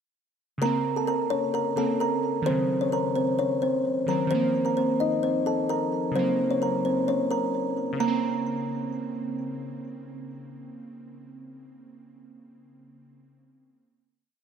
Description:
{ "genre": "hip hop, trap", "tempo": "130 BPM", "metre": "4/4", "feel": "half-time", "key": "Bb harmonic minor", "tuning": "A4 = 440 Hz", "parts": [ { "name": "kalimba", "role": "melody", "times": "0.6-9.3 s", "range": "C4 to Bb5", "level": "-25 LUFS", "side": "left 1 dB", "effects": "digital delay" }, { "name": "glassy digital keys", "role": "accompaniment", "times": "0.6-14.2 s", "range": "Db3 to C4", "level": "-30 LUFS", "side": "right 2 dB", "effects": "chorus" } ], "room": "moderate plate reverb, RT60 3.4 s", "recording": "none", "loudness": "-24 LUFS", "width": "side -7 dB against mid", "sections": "0.6-8.0 breakdown; 8.0-11.7 final chord", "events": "none", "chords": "0.6 Bbmadd9; 2.5 Ebm7; 4.3 F7sus4; 6.2 Gb; 8.0 Bbmadd9", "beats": "| 0.62 1.08 1.54 2.00 | 2.46 2.92 3.39 3.85 | 4.31 4.77 5.23 5.69 | 6.16 6.62 7.08 7.54 | 8.00 8.46 8.93 9.39 | 9.85 10.31 10.77 11.23" }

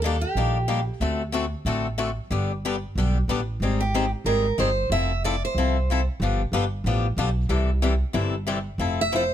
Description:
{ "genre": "acoustic string swing (jazz manouche)", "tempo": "185 BPM", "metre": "4/4", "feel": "swing 59% on 8ths", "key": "unclear", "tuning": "A4 = 439 Hz", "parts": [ { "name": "picked steel-string acoustic guitar", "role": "melody", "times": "0.0-0.8, 3.8-6.0, 9.0-9.3 s", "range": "G4 to E5", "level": "-25 LUFS", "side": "right 3 dB", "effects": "none" }, { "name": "picked swing-style acoustic guitar", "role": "accompaniment", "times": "0.0-9.2 s", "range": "C3 to A4", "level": "-27 LUFS", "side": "left 5 dB", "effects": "none" }, { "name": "upright bass", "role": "bass", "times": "0.0-9.3 s", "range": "F1 to Eb2", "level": "-25 LUFS", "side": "right 1 dB", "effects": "none" } ], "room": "little or no reverb", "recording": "close, detailed microphones", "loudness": "-22 LUFS", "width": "side -10 dB against mid", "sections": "0.0-8.8 A section", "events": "none", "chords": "0.0 Ebmaj7; 1.0 D7; 2.3 G; 3.6 Abmaj7; 4.9 Fmaj7; 6.2 G7; 7.5 C6; 8.8 Fmaj7", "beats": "0.04 0.36 0.69 | 1.01 1.33 1.66 1.98 | 2.31 2.63 2.96 3.28 | 3.60 3.93 4.25 4.58 | 4.90 5.23 5.55 5.87 | 6.20 6.52 6.85 7.17 | 7.50 7.82 8.14 8.47 | 8.79 9.12" }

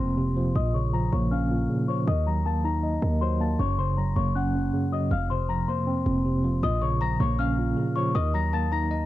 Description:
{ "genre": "hip hop, trap", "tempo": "158 BPM", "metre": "4/4", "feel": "half-time", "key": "Bb harmonic minor", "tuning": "A4 = 440 Hz", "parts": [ { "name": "celesta", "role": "melody", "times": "0.0-9.1 s", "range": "C5 to Bb6", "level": "-30 LUFS", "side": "left 8 dB", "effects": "low-pass filter, cassette tape" }, { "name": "tine electric piano", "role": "accompaniment", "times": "0.0-9.1 s", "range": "F2 to Eb5", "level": "-26 LUFS", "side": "right 1 dB", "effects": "medium tremolo, low-pass filter, cassette tape" }, { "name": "hard-hitting 808-style bass", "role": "bass", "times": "0.0-9.1 s", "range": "F1 to Eb2", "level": "-27 LUFS", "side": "right 1 dB", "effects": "none" } ], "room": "light reverb, studio ambience", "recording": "home recording on cassette", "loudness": "-23 LUFS", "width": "side -15 dB against mid", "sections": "0.6-9.1 A section", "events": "none", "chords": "0.0 Fsus4; 0.6 Bbm; 2.1 Ebm; 3.6 Gb; 5.1 Fsus4; 6.6 Bbm; 8.2 Ebm", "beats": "0.18 | 0.56 0.94 1.31 1.70 | 2.07 2.45 2.83 3.21 | 3.59 3.97 4.35 4.73 | 5.11 5.49 5.87 6.25 | 6.63 7.01 7.39 7.77 | 8.15 8.53 8.91" }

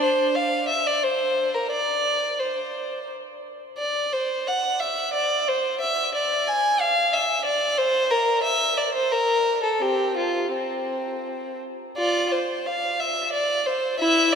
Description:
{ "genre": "classical, baroque-style suite movement for unaccompanied violin", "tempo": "81-93 BPM", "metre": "3/4", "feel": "rubato", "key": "unclear", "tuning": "A4 = 440 Hz", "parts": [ { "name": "rich violin", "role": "solo", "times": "0.0-14.4 s", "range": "C4 to Ab5", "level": "-21 LUFS", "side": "equal", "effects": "none" } ], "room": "wet cathedral reverb, RT60 5.4 s", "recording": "minimal, uncompressed stereo recording", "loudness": "-21 LUFS", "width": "side -6 dB against mid", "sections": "0.0-12.0 A section; 12.0-14.4 A section", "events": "none", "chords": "none", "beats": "0.36 1.03 | 1.72 2.41 3.11 | 3.80 4.48 5.15 | 5.81 6.47 7.13 | 7.78 8.43 9.10 | 9.81 10.54 11.25 | 11.97 12.66 13.33 | 14.00" }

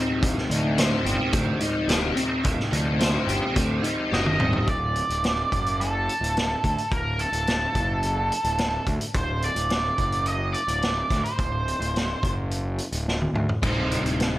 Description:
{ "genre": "psychedelic rock", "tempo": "107 BPM", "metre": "4/4", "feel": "straight", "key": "unclear", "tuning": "A4 = 440 Hz", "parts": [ { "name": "crunchy overdriven guitar", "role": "riff", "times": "0.0-4.7, 13.6-14.4 s", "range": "C3 to C5", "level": "-25 LUFS", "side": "left 1 dB", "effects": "rotary speaker" }, { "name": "deep rumbling drone", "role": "drone", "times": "0.0-4.7 s", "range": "D2 to A2", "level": "-37 LUFS", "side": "equal", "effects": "none" }, { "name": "fuzz picked electric bass", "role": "bass", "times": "0.2-14.4 s", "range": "D1 to D2", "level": "-27 LUFS", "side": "equal", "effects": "overdrive" }, { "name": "vintage drum kit", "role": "drums", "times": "0.2-14.3 s", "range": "crash cymbal, hi-hat, kick drum, snare drum, toms", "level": "-27 LUFS", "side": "equal", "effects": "none" }, { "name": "octave-fuzz lead guitar", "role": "melody", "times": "4.1-12.3 s", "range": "A4 to Eb5", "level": "-26 LUFS", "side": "right 1 dB", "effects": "wah, distortion, slapback echo" } ], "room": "light reverb, small room reverb", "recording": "none", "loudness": "-22 LUFS", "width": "side -15 dB against mid", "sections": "0.0-4.7 A section; 4.7-14.4 B section", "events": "drum fill 4.1-4.7, 13.1-13.6", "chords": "0.0 Cm/D; 4.7 D; 13.6 Cm/D", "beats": "| 0.23 0.79 1.34 1.90 | 2.46 3.01 3.57 4.12 | 4.68 5.24 5.79 6.35 | 6.91 7.47 8.03 8.59 | 9.15 9.71 10.27 10.83 | 11.39 11.95 12.51 13.07 | 13.63 14.19" }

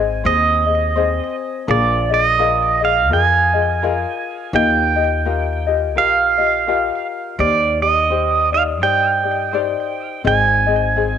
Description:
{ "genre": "Hawaiian", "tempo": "84 BPM", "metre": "4/4", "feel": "swing 59% on 8ths", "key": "Eb major", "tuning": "A4 = 440 Hz", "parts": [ { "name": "ukulele", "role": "accompaniment", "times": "0.0-11.2 s", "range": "C4 to Eb5", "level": "-21 LUFS", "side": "left 11 dB", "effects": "none" }, { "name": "upright bass", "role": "bass", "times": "0.0-11.2 s", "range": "Ab1 to G2", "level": "-22 LUFS", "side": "left 1 dB", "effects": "none" }, { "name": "pedal steel guitar", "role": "melody", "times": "0.3-11.2 s", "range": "D5 to Ab5", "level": "-17 LUFS", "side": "right 6 dB", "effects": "cassette tape, tape echo" } ], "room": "moderate spring reverb, RT60 2.9 s", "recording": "home recording on cassette", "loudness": "-14 LUFS", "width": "side -8 dB against mid", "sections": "0.0-11.2 A section", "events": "none", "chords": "0.0 Ab; 1.7 Bb7sus4; 4.5 Ebadd9; 7.4 Cmadd9/Eb; 10.2 Ab", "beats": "0.25 0.97 | 1.68 2.40 3.11 3.82 | 4.54 5.25 5.96 6.68 | 7.39 8.10 8.82 9.53 | 10.24 10.95" }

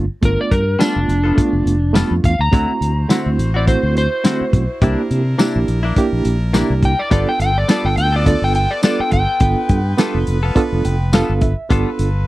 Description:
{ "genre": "straight-eighth soul blues", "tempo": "104 BPM", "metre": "4/4", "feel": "swing 55% on 16ths", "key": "G mixolydian", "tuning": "A4 = 439 Hz", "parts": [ { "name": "barky reed electric piano", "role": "accompaniment", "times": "0.0-12.1 s", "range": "A3 to G5", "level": "-20 LUFS", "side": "right 4 dB", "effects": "overdrive, medium tremolo" }, { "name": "fingered electric bass", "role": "bass", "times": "0.0-12.2 s", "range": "F1 to C3", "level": "-18 LUFS", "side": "equal", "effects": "none" }, { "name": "warm soul drum kit", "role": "drums", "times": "0.2-12.1 s", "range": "hi-hat, kick drum, snare drum, tambourine", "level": "-17 LUFS", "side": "equal", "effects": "none" }, { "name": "electric slide guitar", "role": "melody", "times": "0.3-10.2 s", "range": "D4 to Bb5", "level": "-20 LUFS", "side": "equal", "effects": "none" }, { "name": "direct-recorded clean electric guitar", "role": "stabs", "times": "0.8-11.9 s", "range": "C3 to A4", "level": "-22 LUFS", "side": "left 4 dB", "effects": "wide subtle chorus" }, { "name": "brilliant horn section", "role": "sustained chords", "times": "2.5-12.3 s", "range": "B3 to C5", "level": "-31 LUFS", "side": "left 2 dB", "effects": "none" } ], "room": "little or no reverb", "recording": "dry, close 1970s-style studio recording", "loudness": "-14 LUFS", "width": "side -17 dB against mid", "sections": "0.0-11.7 A section", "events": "electric slide guitar solo 0.0-11.7; reed electric piano fill 10.6-11.7", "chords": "0.0 G9; 2.5 D9; 4.8 C9; 7.1 G9", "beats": "| 0.23 0.80 1.38 1.95 | 2.53 3.10 3.67 4.25 | 4.82 5.40 5.97 6.54 | 7.12 7.69 8.27 8.84 | 9.41 9.99 10.56 11.13 | 11.71" }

